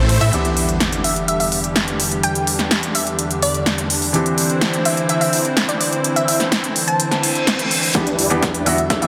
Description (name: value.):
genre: EDM, festival progressive house.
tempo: 126 BPM.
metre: 4/4.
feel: straight.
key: E minor.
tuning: A4 = 441 Hz.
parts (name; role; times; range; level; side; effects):
lush unison pad; sustained chords; 0.0-9.1 s; E2 to C4; -25 LUFS; equal; chorus, sidechain pumping.
supersaw chords; riff; 0.0-0.3, 8.0-9.1 s; A3 to E5; -26 LUFS; equal; sidechain pumping, low-pass filter, delay.
big-room dance drum kit; drums; 0.1-9.1 s; hi-hat, ride cymbal, snare drum; -22 LUFS; equal; overdrive.
felt-muted upright piano; accompaniment; 0.3-9.1 s; E3 to G4; -26 LUFS; equal; sidechain pumping, delay.
sub drop, reverse cymbal and riser; sound effects; 0.3-2.2, 7.2-9.1 s; none; -28 LUFS; equal; none.
glassy wavetable pluck; melody; 1.0-9.1 s; D5 to A5; -26 LUFS; equal; chorus, delay.
electronic kick drum; drums; 7.9-9.0 s; none; -24 LUFS; equal; overdrive, high-pass filter on kick, high-pass filter on room.
room: moderate lush hall reverb, RT60 1.9 s, digital ambience.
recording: dense, heavily limited modern master.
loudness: -18 LUFS.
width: mono.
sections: 0.3-8.0 A section; 8.0-9.1 B section.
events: impact 0.3-2.2; reverse cymbal 7.2-8.0; build-up 8.0-9.1; drum fill 8.0-9.1; riser 8.0-9.1; filter sweep on supersaw synth 8.0-9.1; filter sweep on analog synth pad 8.0-9.1.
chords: 0.3 Em7; 4.1 Cadd9; 8.0 Em7.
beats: | 0.33 0.81 1.28 1.76 | 2.24 2.71 3.19 3.66 | 4.14 4.62 5.09 5.57 | 6.04 6.52 7.00 7.47 | 7.95 8.43 8.90.